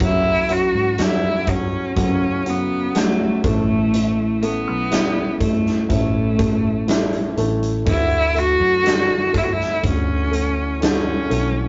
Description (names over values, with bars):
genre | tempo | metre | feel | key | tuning
pop ballad | 61 BPM | 4/4 | straight | unclear | A4 = 440 Hz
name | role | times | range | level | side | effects
warm grand piano | accompaniment | 0.0-11.7 s | D3 to E4 | -29 LUFS | equal | none
fingerpicked plugged-in steel-string acoustic guitar | arpeggios | 0.0-11.7 s | F#2 to A4 | -29 LUFS | equal | none
vintage muted fingered electric bass | bass | 0.0-11.7 s | A1 to G#2 | -28 LUFS | equal | none
huge arena drum kit | drums | 0.0-11.5 s | hi-hat, kick drum, snare drum | -25 LUFS | equal | none
clear cello | melody | 0.1-11.7 s | A3 to F#4 | -23 LUFS | equal | none
room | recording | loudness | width
moderate small room reverb, RT60 0.5 s | rough rehearsal-room recording, tube saturation, nothing above 7.6 kHz | -19 LUFS | mono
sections
0.0-11.7 A section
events
none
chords
0.0 F#m7; 3.4 A; 7.9 Dadd9